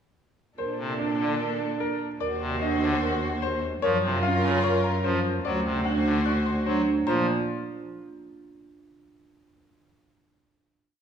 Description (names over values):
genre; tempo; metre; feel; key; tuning
classical, minimalist pattern music; 148 BPM; 4/4; straight; unclear; A4 = 443 Hz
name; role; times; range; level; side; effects
bright baby grand piano; melody; 0.6-7.3 s; Bb4 to F#5; -32 LUFS; left 8 dB; none
clear soprano saxophone; second line; 0.6-6.8 s; D4 to Gb4; -33 LUFS; right 3 dB; none
rich symphonic string section; sustained chords; 0.6-6.8 s; D4 to C5; -34 LUFS; left 3 dB; none
marimba with medium mallets; arpeggios; 0.6-7.3 s; Db4 to C5; -30 LUFS; right 4 dB; none
rich cello; bass; 0.6-7.3 s; D2 to Bb2; -29 LUFS; right 1 dB; none
pipe organ, trumpet; accompaniment; 0.8-7.3 s; C3 to F#3; -31 LUFS; equal; none
xylophone with soft rubber mallets; arpeggios; 4.6-7.3 s; Bb5 to F#6; -36 LUFS; left 4 dB; none
room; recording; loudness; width
wet recital hall reverb, RT60 1.6 s; small room ambience; -23 LUFS; side -8 dB against mid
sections
0.6-7.1 A section; 7.1-8.7 final chord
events
none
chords
0.6 Bbmaj7; 2.2 Ebm6; 3.8 Gbmaj7; 5.4 D7; 7.1 Bb5